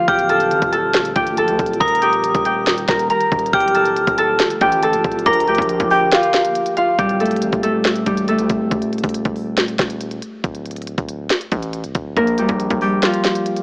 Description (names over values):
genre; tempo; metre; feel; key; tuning
hip hop, trap; 139 BPM; 4/4; half-time; D phrygian; A4 = 440 Hz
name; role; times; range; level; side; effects
Celtic harp; melody; 0.0-13.6 s; F3 to Bb5; -16 LUFS; equal; low-pass filter, tape echo
ethereal airy pad; sustained chords; 0.0-7.0 s; D3 to G4; -29 LUFS; right 1 dB; ensemble chorus, built-in reverb
metallic FM bell; second line; 0.1-6.1 s; D6 to F6; -21 LUFS; equal; chorus, tape echo
distorted 808-style bass; bass; 0.1-13.0 s; C1 to D2; -24 LUFS; equal; distortion
trap drum kit; drums; 0.1-13.6 s; hi-hat, kick drum, snare drum; -20 LUFS; equal; none
room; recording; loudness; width
light reverb, digital ambience; AM radio sound; -15 LUFS; side -28 dB against mid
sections
0.0-7.0 A section; 7.0-13.6 B section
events
kick muted 6.1-7.0, 13.0-13.6; break 8.7-12.2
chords
0.1 Dm; 1.8 Eb; 3.5 Dm; 5.3 Bb; 7.0 D5; 8.7 N.C.; 10.4 D5; 12.2 Bb5